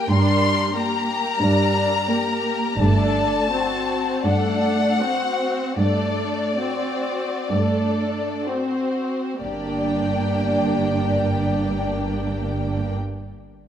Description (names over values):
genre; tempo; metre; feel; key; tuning
classical, slow romantic movement for string orchestra; 30-48 BPM; 4/4; rubato; G minor; A4 = 440 Hz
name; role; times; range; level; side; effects
dark symphonic violin section; melody; 0.0-12.9 s; D5 to C6; -26 LUFS; left 5 dB; none
warm symphonic violin section; second line; 0.0-12.9 s; F#4 to D5; -27 LUFS; left 2 dB; none
warm symphonic viola section; accompaniment; 0.0-12.9 s; G3 to D4; -24 LUFS; right 1 dB; none
rich symphonic cello section; bass; 0.1-12.9 s; G2; -24 LUFS; right 2 dB; none
warm symphonic double bass section; bass; 2.8-12.9 s; G1; -27 LUFS; right 2 dB; none
room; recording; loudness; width
moderate scoring stage reverb, RT60 2.1 s; none; -19 LUFS; side -9 dB against mid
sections
0.0-9.4 A section; 9.4-13.7 B section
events
slowing down 0.0-9.4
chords
0.0 Gm; 2.8 D7/G; 9.4 Gm